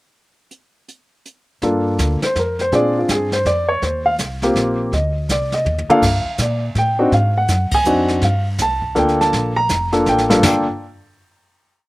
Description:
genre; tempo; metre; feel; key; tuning
jazz piano trio; 163 BPM; 3/4; swing 63% on 8ths; G minor; A4 = 440 Hz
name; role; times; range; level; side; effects
jazz brush drum kit; drums; 0.5-10.8 s; brushed snare drum, crash cymbal, hi-hat, kick drum, ride cymbal, snare drum, toms; -22 LUFS; equal; none
warm grand piano; melody; 1.6-10.7 s; G2 to Bb5; -16 LUFS; equal; none
upright bass; bass; 1.6-10.6 s; F1 to Bb2; -21 LUFS; equal; none
room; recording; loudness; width
little or no reverb; recorded outdoors, with no room sound; -15 LUFS; side -19 dB against mid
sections
0.5-1.6 pickup bar; 1.6-10.4 A section; 10.4-11.5 final chord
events
drum fill 5.7-6.0, 10.1-10.4; band accent 7.7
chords
0.5 N.C.; 1.6 Gm7; 2.7 Bb7; 3.8 Eb69; 4.9 D5; 6.0 Gm7; 7.1 Ab7#11; 8.2 Gm7; 10.4 N.C.

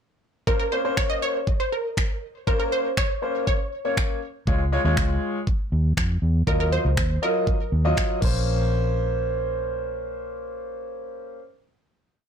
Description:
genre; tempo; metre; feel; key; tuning
dance-pop; 120 BPM; 4/4; straight; Bb minor; A4 = 439 Hz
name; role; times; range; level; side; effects
wide unison pluck; melody; 0.5-7.9 s; Bb4 to Eb5; -26 LUFS; right 1 dB; digital delay
clear concert grand piano; accompaniment; 0.5-11.4 s; Gb3 to Eb5; -27 LUFS; left 1 dB; sidechain pumping
pop drum kit; drums; 0.5-8.3 s; crash cymbal, finger snaps, kick drum; -24 LUFS; equal; soft clipping on snare
vintage muted fingered electric bass; bass; 4.5-11.4 s; Bb1 to F2; -23 LUFS; equal; transformer saturation, sidechain pumping
room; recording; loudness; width
light reverb; blown-out, overdriven recording, overdrive; -21 LUFS; side -8 dB against mid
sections
0.5-8.5 verse; 8.5-12.3 final hit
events
none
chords
0.5 Bbmadd9; 4.5 Db; 6.5 Ebmadd9; 8.2 Bbmadd9

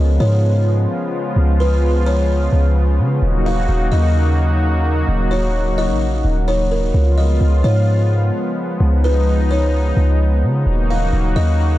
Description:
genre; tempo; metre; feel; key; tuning
hip hop; 129 BPM; 4/4; half-time; unclear; A4 = 440 Hz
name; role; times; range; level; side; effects
buzzing kalimba; melody; 0.0-11.8 s; Bb4 to F5; -24 LUFS; left 1 dB; tape echo
warm analog pad; sustained chords; 0.0-11.8 s; Db3 to Gb4; -21 LUFS; left 1 dB; chorus
warm 808-style bass; bass; 0.0-11.8 s; Eb1 to Db3; -15 LUFS; equal; none
room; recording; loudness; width
light reverb; dark, warm production; -14 LUFS; side -15 dB against mid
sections
0.0-11.8 A section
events
none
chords
0.0 Db7; 3.2 Ebm7; 6.9 Db7; 10.7 Ebm7

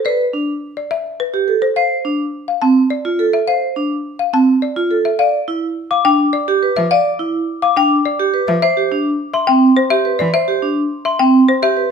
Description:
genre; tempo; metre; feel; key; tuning
classical, minimalist pattern music; 105 BPM; 3/4; straight; C major; A4 = 440 Hz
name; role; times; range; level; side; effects
folk marimba with medium hard mallets; melody; 0.0-11.8 s; B4 to A5; -18 LUFS; left 8 dB; none
vibraphone with medium hard mallets; arpeggios; 0.0-11.9 s; C4 to D5; -15 LUFS; right 4 dB; none
glockenspiel with soft plastic mallets; arpeggios; 5.9-11.2 s; C6 to D6; -22 LUFS; left 4 dB; none
rich cello; accompaniment; 6.8-10.3 s; E3 to F3; -22 LUFS; right 1 dB; none
room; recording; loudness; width
moderate large studio reverb, RT60 1.1 s; none; -13 LUFS; side -6 dB against mid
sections
0.0-11.9 A section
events
none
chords
0.0 A7sus2; 1.8 F6; 5.2 G7; 8.6 Cmaj7

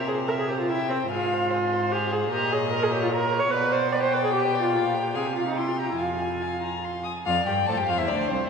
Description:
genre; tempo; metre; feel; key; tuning
quick classical-period movement for string quartet; 146 BPM; 3/4; rubato; F minor; A4 = 444 Hz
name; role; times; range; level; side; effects
warm violin; melody; 0.0-8.5 s; Bb4 to Eb6; -29 LUFS; left 7 dB; none
warm violin; second line; 0.0-8.5 s; C4 to C6; -32 LUFS; left 1 dB; none
rich viola; accompaniment; 0.0-8.5 s; C4 to D5; -26 LUFS; right 2 dB; none
rich cello; bass; 0.0-8.4 s; C2 to C3; -30 LUFS; right 3 dB; none
room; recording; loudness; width
wet cathedral reverb, RT60 4.5 s; recorded in a church or concert hall; -22 LUFS; side -6 dB against mid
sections
0.0-7.3 A section; 7.3-8.5 A section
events
none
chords
0.0 C; 1.1 Fm/Ab; 2.3 Bbm; 3.5 Gadd11/B; 4.7 Gm7/Bb; 5.2 Fm/C; 5.6 C5; 6.0 Fm; 7.3 F5

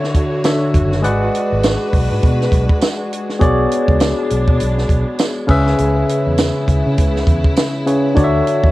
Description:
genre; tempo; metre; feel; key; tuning
lush 1970s-style soul; 101 BPM; 4/4; swing 58% on 16ths; unclear; A4 = 441 Hz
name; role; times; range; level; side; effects
barky tine electric piano; accompaniment; 0.0-8.7 s; C#3 to F#5; -17 LUFS; left 1 dB; phaser, cassette tape
clear studio string section; sustained chords; 0.0-8.7 s; C#3 to C#5; -26 LUFS; right 1 dB; cassette tape
compact cocktail drum kit; drums; 0.0-8.7 s; crash cymbal, hi-hat, kick drum, snare drum; -16 LUFS; right 1 dB; cassette tape
tambourine; percussion; 0.5-7.7 s; none; -32 LUFS; right 7 dB; none
vintage muted fingered electric bass; bass; 0.7-8.7 s; F#1 to C#3; -18 LUFS; equal; none
room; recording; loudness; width
little or no reverb; home recording on cassette; -13 LUFS; side -17 dB against mid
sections
0.0-8.7 A section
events
none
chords
0.0 Dmaj9; 1.0 G#m7b5; 3.4 Bm69; 5.5 C#m7; 8.2 Dmaj9

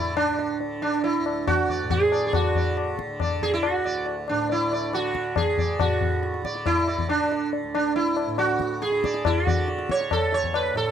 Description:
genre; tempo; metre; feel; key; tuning
indian classical, Hindustani; 139 BPM; 4/4; straight; D raga yaman; A4 = 440 Hz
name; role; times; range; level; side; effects
sitar; melody; 0.0-10.9 s; D4 to D5; -24 LUFS; right 4 dB; none
tanpura; drone; 0.0-10.9 s; D2 to D3; -34 LUFS; right 1 dB; none
tabla; percussion; 0.2-10.9 s; none; -27 LUFS; left 6 dB; none
room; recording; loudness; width
little or no reverb; dry, close 1970s-style studio recording; -22 LUFS; side -9 dB against mid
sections
0.0-5.8 A section; 5.8-10.9 B section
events
none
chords
none

